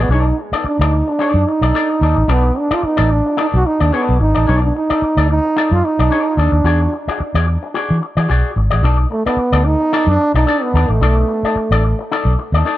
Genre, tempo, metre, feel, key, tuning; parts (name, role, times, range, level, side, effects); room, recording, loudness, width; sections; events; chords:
funk; 110 BPM; 4/4; swing 56% on 16ths; A4 = 440 Hz
breathy trombone; melody; 0.0-12.0 s; A3 to F#4; -17 LUFS; right 2 dB; plate reverb, tape echo
electric guitar with an envelope filter; accompaniment; 0.0-12.8 s; D#4 to D5; -20 LUFS; left 5 dB; plate reverb
vintage muted fingered electric bass; bass; 0.0-12.6 s; G#1 to E3; -14 LUFS; equal
light reverb; -13 LUFS; side -14 dB against mid
0.0-8.8 A section; 8.8-12.8 B section
trombone solo 0.0-8.8
0.1 B7#9; 6.7 E9; 8.8 B7#9